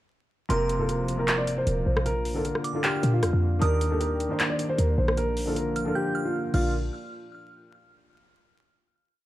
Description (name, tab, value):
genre	hip hop, trap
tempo	154 BPM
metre	4/4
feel	half-time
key	Bb major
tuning	A4 = 440 Hz
part	dark concert grand piano	melody	0.5-6.7 s	F4 to D5	-29 LUFS	right 1 dB	low-pass filter, digital delay
part	delicate synth tine bell	second line	0.5-6.7 s	C6 to G6	-36 LUFS	right 4 dB	chorus, digital delay
part	felt-muted upright piano	accompaniment	0.5-6.8 s	C3 to C5	-31 LUFS	left 1 dB	low-pass filter
part	dark analog pad	sustained chords	0.5-6.7 s	Bb2 to C5	-35 LUFS	right 1 dB	chorus
part	short 808-style bass	bass	0.5-6.9 s	Eb1 to Bb2	-26 LUFS	equal	none
part	trap drum kit	drums	0.5-6.6 s	crash cymbal, handclaps, hi-hat, rim click	-30 LUFS	equal	none
room	light reverb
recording	dark, warm production, vinyl crackle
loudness	-23 LUFS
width	side -15 dB against mid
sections	0.5-6.7 hook; 6.7-8.3 final hit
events	drums muted 6.0-6.7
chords	0.5 Fsus4; 2.1 Bb; 3.6 Ebmaj7; 5.2 Bb; 6.7 N.C.